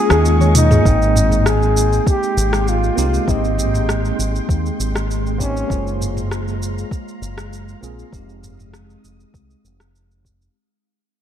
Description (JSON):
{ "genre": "sunset chillout", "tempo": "99 BPM", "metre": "4/4", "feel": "straight", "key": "Ab major", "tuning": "A4 = 443 Hz", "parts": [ { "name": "breathy flugelhorn", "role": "melody", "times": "0.0-6.0 s", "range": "Db4 to Ab4", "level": "-21 LUFS", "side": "equal", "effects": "tape echo" }, { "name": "tine electric piano", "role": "accompaniment", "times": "0.0-10.6 s", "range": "Ab3 to G5", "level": "-25 LUFS", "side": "right 1 dB", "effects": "medium stereo tremolo, auto-pan, low-pass filter, tape echo" }, { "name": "soft string machine", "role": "sustained chords", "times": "0.0-10.5 s", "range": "Ab3 to Eb6", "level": "-26 LUFS", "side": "left 1 dB", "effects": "ensemble chorus" }, { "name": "soft round pluck", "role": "arpeggios", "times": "0.1-0.8 s", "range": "Ab4 to Db5", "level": "-27 LUFS", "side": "left 3 dB", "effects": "none" }, { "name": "fingered electric bass with an envelope filter", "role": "bass", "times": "0.1-10.5 s", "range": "F1 to Eb2", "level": "-19 LUFS", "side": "equal", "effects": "none" }, { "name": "smooth R&B drum kit", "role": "drums", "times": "0.1-10.5 s", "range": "hi-hat, rim click, shaker, toms", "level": "-21 LUFS", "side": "equal", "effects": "overdrive" }, { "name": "electronic kick drum", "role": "drums", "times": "0.9-10.4 s", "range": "none", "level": "-18 LUFS", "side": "equal", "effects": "overdrive" } ], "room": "light reverb", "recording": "dark, warm production", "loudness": "-15 LUFS", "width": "side -10 dB against mid", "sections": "0.9-10.6 A section", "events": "kick drops out 0.2-0.9; drum fill 0.4-0.9; fade-out 0.9-10.6", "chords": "0.0 Eb7sus4; 0.9 Abmaj7; 5.7 Gbmaj9#11; 8.1 Fm7" }